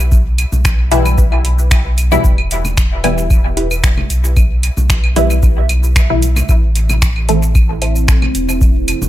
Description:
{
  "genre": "dub techno",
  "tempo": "113 BPM",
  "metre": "4/4",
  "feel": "straight",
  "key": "unclear",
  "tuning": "A4 = 440 Hz",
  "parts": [
    { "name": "warm sub bass", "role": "bass", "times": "0.0-9.1 s", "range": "E1 to B1", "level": "-15 LUFS", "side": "equal", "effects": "sidechain pumping" },
    { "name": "booming analog drum machine", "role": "drums", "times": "0.1-9.1 s", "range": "cabasa, finger snaps, hi-hat", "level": "-21 LUFS", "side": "right 1 dB", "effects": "dub echo" },
    { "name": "electronic kick drum", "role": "drums", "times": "0.1-8.7 s", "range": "none", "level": "-13 LUFS", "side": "equal", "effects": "none" },
    { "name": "claves and congas", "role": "percussion", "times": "0.4-9.1 s", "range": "none", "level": "-24 LUFS", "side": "equal", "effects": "sidechain pumping on perc, dub echo" },
    { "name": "filtered dub chord stab", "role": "riff", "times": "0.9-7.9 s", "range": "E4 to E5", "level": "-25 LUFS", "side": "left 2 dB", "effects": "phaser, sidechain pumping, dub echo" },
    { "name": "filtered dub chord stab", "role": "stabs", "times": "0.9-7.6 s", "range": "B2 to A4", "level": "-18 LUFS", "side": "equal", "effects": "phaser, sidechain pumping, dub echo" },
    { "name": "deep dark ambient pad", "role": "sustained chords", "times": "7.4-9.1 s", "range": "C4 to C5", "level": "-22 LUFS", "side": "right 1 dB", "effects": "chorus, built-in reverb, sidechain pumping" }
  ],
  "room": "little or no reverb",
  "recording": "none",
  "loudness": "-11 LUFS",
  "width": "side -14 dB against mid",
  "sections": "0.0-9.1 A section",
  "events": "none",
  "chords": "0.0 Em; 6.5 Am"
}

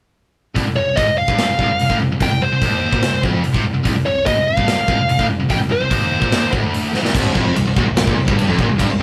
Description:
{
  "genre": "heavy metal",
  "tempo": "146 BPM",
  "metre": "4/4",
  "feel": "straight",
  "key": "C minor",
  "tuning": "A4 = 440 Hz",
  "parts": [
    { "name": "high-gain distorted guitar", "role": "riff", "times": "0.6-9.0 s", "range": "C2 to C3", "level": "-24 LUFS", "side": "equal", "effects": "distortion" },
    { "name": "scooped high-gain guitar", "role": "riff", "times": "0.6-9.0 s", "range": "C2 to C3", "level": "-25 LUFS", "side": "equal", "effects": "distortion" },
    { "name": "big rock drum kit", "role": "drums", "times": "0.6-8.9 s", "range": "crash cymbal, hi-hat, kick drum, snare drum", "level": "-22 LUFS", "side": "equal", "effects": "none" },
    { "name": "high-gain lead guitar", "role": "melody", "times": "0.8-6.5 s", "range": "C5 to G5", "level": "-21 LUFS", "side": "equal", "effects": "distortion" },
    { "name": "fuzz fingered electric bass", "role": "bass", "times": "7.1-9.0 s", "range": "C1 to Bb1", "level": "-26 LUFS", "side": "equal", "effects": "none" },
    { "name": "tight distorted guitar", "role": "riff", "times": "7.2-9.0 s", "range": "C2 to Bb2", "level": "-24 LUFS", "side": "equal", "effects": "distortion" }
  ],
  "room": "moderate stone room reverb, RT60 1.2 s",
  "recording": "rough rehearsal-room recording, tube saturation, lossy compression artefacts",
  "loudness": "-17 LUFS",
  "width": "mono",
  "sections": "0.6-7.1 A section; 7.1-9.0 B section",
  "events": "drum fill 6.9",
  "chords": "0.6 Cm"
}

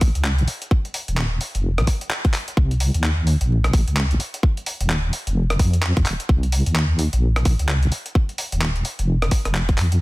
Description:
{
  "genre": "UK garage, two-step garage",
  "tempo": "129 BPM",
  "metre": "4/4",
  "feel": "swing 61% on 16ths",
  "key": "C minor",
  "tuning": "A4 = 440 Hz",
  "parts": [
    { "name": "deep soft wobble bass", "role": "bass", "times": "0.0-10.0 s", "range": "Eb1 to F2", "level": "-19 LUFS", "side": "equal", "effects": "chorus" },
    { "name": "breakbeat sampler-style drum kit", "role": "drums", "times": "0.0-10.0 s", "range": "handclaps, hi-hat, rim click", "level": "-26 LUFS", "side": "equal", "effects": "studio reverb, soft clipping on snare" },
    { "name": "electronic kick drum", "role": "drums", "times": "0.0-9.8 s", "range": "none", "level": "-18 LUFS", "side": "equal", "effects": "overdrive, studio reverb" }
  ],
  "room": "digital ambience",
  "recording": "dense, heavily limited modern master, vinyl crackle",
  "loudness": "-18 LUFS",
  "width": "side -21 dB against mid",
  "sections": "0.0-10.0 A section",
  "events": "none",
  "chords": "none"
}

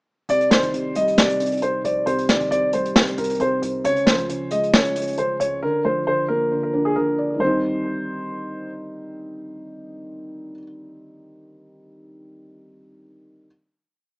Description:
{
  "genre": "hip hop, trap",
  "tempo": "135 BPM",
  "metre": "4/4",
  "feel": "half-time",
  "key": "C minor",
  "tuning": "A4 = 439 Hz",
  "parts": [
    { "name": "dark grand piano", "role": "melody", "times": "0.3-8.7 s", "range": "Ab4 to Eb5", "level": "-21 LUFS", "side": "equal", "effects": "none" },
    { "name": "felt-muted upright piano", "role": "accompaniment", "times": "0.3-13.5 s", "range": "C3 to D5", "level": "-26 LUFS", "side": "equal", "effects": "none" },
    { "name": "short 808-style bass", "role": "bass", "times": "0.3-5.6 s", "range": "Bb1 to Db2", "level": "-39 LUFS", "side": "equal", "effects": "none" },
    { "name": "vintage brush drum kit", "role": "drums", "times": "0.3-5.5 s", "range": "hi-hat, snare drum", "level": "-19 LUFS", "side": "equal", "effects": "none" }
  ],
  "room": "light reverb, studio reverb",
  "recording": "rough home demo mix, small speaker sound",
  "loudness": "-18 LUFS",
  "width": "side -28 dB against mid",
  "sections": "0.3-7.4 hook; 7.4-11.0 final chord",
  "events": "none",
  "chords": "0.3 Cm; 3.8 Db; 5.6 Bb; 7.4 Cm"
}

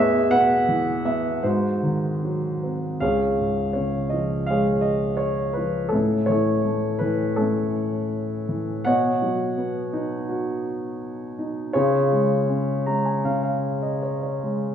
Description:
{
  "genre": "classical, lyrical solo piano",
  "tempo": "82 BPM",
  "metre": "4/4",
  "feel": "rubato",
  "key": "Db mixolydian from 3.0 s",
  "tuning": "A4 = 436 Hz",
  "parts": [
    { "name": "dark baby grand piano", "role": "solo", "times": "0.0-14.7 s", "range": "Db2 to Bb5", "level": "-21 LUFS", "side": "equal", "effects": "none" }
  ],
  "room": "wet scoring stage reverb, RT60 1.9 s",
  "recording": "recorded in a church or concert hall, studio reverb",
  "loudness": "-21 LUFS",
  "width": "side -8 dB against mid",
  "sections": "0.0-3.0 A section; 3.0-14.7 B section",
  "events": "grand piano fill 12.5-14.7",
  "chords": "0.0 E; 1.4 Ab7; 3.0 Db; 5.9 A; 8.9 Cbadd9; 11.8 Db"
}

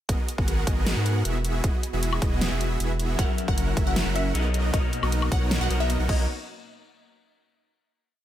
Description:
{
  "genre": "future bass",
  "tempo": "155 BPM",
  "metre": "4/4",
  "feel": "half-time",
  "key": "B major",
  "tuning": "A4 = 439 Hz",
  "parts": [
    { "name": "airy breathy pad", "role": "sustained chords", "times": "0.3-6.3 s", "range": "E3 to B4", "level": "-39 LUFS", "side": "right 2 dB", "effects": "none" },
    { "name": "supersaw chords", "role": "riff", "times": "0.1-6.2 s", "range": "B3 to F#5", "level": "-30 LUFS", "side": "right 2 dB", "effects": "sidechain pumping, tape echo" },
    { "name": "saturated sub bass", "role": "bass", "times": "0.1-6.3 s", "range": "E1 to G#2", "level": "-26 LUFS", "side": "equal", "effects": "sidechain pumping" },
    { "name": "big-room dance drum kit", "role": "drums", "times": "0.1-6.2 s", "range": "crash cymbal, hi-hat, snare drum, woodblock", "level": "-30 LUFS", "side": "left 1 dB", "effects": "none" },
    { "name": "electronic kick drum", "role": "drums", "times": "0.1-6.2 s", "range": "none", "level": "-25 LUFS", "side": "equal", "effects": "none" },
    { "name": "wide unison pluck", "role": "melody", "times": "3.2-6.2 s", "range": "D#5 to F#5", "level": "-33 LUFS", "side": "left 1 dB", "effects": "analog chorus, sidechain pumping, tape echo" },
    { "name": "electric guitar at the edge of break-up", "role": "accompaniment", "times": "3.2-6.3 s", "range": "B2 to E5", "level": "-33 LUFS", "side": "left 6 dB", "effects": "sidechain pumping, tape echo" }
  ],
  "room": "little or no reverb",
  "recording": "none",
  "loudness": "-22 LUFS",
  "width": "side -12 dB against mid",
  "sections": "0.1-6.3 drop; 6.3-7.8 final hit",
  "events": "drop 0.1-6.3",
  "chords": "0.1 G#m9; 1.4 Emaj9; 3.2 F#7; 4.5 Bmaj9; 6.3 N.C."
}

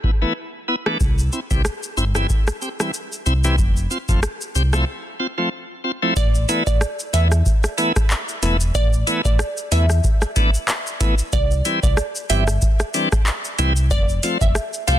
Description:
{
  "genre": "dancehall",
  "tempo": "93 BPM",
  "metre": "4/4",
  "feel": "swing 56% on 16ths",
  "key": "A minor",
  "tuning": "A4 = 440 Hz",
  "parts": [
    { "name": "bright tonewheel organ", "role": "accompaniment", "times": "0.0-15.0 s", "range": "E3 to G4", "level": "-23 LUFS", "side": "equal", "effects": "overdrive, slow rotary speaker" },
    { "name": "booming analog drum machine", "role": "drums", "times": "0.0-15.0 s", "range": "handclaps, hi-hat, kick drum, rim click, shaker", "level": "-20 LUFS", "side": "equal", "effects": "none" },
    { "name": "sub bass with octave", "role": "bass", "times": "1.0-15.0 s", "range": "E1 to E2", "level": "-19 LUFS", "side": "equal", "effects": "none" },
    { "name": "glassy wavetable pluck", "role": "melody", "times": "6.2-15.0 s", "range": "D5 to F5", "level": "-27 LUFS", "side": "right 2 dB", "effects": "chorus, tape echo" }
  ],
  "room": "little or no reverb",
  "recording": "dense, heavily limited modern master",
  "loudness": "-17 LUFS",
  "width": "side -12 dB against mid",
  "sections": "0.0-6.2 A section; 6.2-15.0 B section",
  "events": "break 4.9-6.2",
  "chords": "0.0 Asus2; 1.0 C; 3.6 F; 6.2 Asus2; 11.3 C; 13.9 F"
}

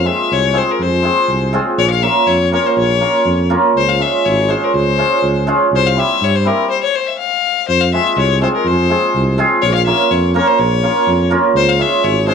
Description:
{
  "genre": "balkan folk, Balkan wedding band",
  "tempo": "122 BPM",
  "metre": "2/4",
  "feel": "straight",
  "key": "F harmonic minor",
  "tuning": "A4 = 445 Hz",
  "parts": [
    { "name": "rich fiddle", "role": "melody", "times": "0.0-12.3 s", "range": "Bb4 to F5", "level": "-16 LUFS", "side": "left 10 dB", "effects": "none" },
    { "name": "cimbalom", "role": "accompaniment", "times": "0.0-12.3 s", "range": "G3 to Bb4", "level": "-15 LUFS", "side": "right 2 dB", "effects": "none" },
    { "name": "mellow tuba", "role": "bass", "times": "0.0-12.3 s", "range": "Ab1 to G2", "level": "-17 LUFS", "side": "right 1 dB", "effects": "none" }
  ],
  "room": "light reverb",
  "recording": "none",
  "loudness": "-12 LUFS",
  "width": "side -6 dB against mid",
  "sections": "0.0-7.7 A section; 7.7-12.3 A section",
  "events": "speeding up 0.0-12.3; stop 6.7-7.7",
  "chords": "0.0 Fm; 1.8 Bbm; 3.8 Db; 5.7 C; 6.7 N.C.; 7.7 Fm; 9.6 Bbm; 11.6 Db"
}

